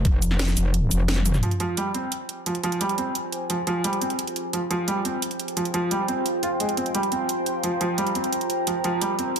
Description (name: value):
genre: dark technical drum and bass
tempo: 174 BPM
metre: 4/4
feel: straight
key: F minor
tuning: A4 = 440 Hz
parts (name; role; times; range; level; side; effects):
- metallic wobble bass; bass; 0.1-1.4 s; F1; -21 LUFS; equal; distortion, chorus, overdrive, sidechain pumping
- drum and bass drum kit; drums; 0.1-9.4 s; hi-hat, shaker, snare drum, toms; -28 LUFS; right 2 dB; overdrive, small room reverb
- deep dark ambient pad; sustained chords; 2.4-9.4 s; F4 to Bb5; -28 LUFS; equal; chorus, built-in reverb, sidechain pumping
- felt-muted upright piano; arpeggios; 1.4-9.3 s; F3 to F4; -26 LUFS; right 2 dB; sidechain pumping, digital delay
room: moderate digital room reverb, RT60 1.0 s, digital ambience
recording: dense, heavily limited modern master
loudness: -22 LUFS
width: side -7 dB against mid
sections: 0.0-1.4 A section; 1.4-9.4 B section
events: drop 0.0-1.4; drum fill 1.1-1.4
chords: 0.0 F5; 1.4 Fm